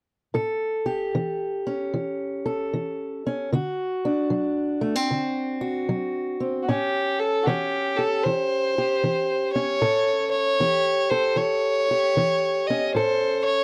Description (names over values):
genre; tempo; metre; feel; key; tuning
acoustic country blues, solo or duo; 76 BPM; 4/4; swing 65% on 8ths; A mixolydian; A4 = 441 Hz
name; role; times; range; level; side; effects
fingerpicked steel-string acoustic guitar; accompaniment; 0.3-13.6 s; A2 to A4; -27 LUFS; equal; none
dark fiddle; melody; 6.6-13.6 s; F#4 to D#5; -24 LUFS; equal; none
room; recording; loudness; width
light reverb; dry, close 1970s-style studio recording; -24 LUFS; mono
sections
0.3-6.7 A section; 6.7-13.6 B section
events
none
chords
0.3 A7; 3.5 D7; 6.7 A7